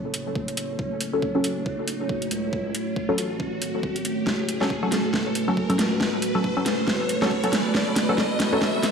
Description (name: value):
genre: deep dubstep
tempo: 138 BPM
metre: 4/4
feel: swing 58% on 16ths, half-time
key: F# minor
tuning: A4 = 440 Hz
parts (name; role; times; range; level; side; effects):
- deep dark ambient pad; sustained chords; 0.0-8.9 s; A3 to C#5; -27 LUFS; equal; chorus, built-in reverb
- saturated sub bass; bass; 0.0-8.9 s; F#1 to C#2; -37 LUFS; right 1 dB; high-pass filter
- riser; sound effects; 0.0-8.9 s; none; -32 LUFS; equal; none
- dubstep drum kit; drums; 0.1-8.9 s; hi-hat, snare drum; -26 LUFS; right 1 dB; studio reverb
- electronic kick drum; drums; 0.4-8.7 s; none; -32 LUFS; equal; high-pass filter on kick, studio reverb
- filtered dub chord stab; stabs; 1.1-8.6 s; F#3 to A4; -27 LUFS; left 1 dB; phaser, dub echo
room: wet echo chamber reverb, RT60 2.3 s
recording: dark, warm production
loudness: -22 LUFS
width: side -6 dB against mid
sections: 0.0-8.9 A section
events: build-up 0.0-8.9; riser 0.0-8.9; drum fill 4.3-8.9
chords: 0.0 F#m